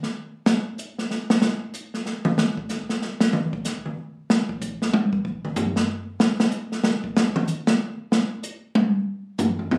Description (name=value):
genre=jazz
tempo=188 BPM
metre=3/4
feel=swing 61% on 8ths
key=none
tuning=none
part: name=open jazz drum kit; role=drums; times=0.0-9.8 s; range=hi-hat, kick drum, snare drum, toms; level=-24 LUFS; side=equal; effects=none
room=wet club reverb, RT60 0.6 s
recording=recorded on a phone in the room, club reverb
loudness=-24 LUFS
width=mono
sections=0.0-2.4 A section; 2.4-9.8 A section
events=drum solo 0.0-9.8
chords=none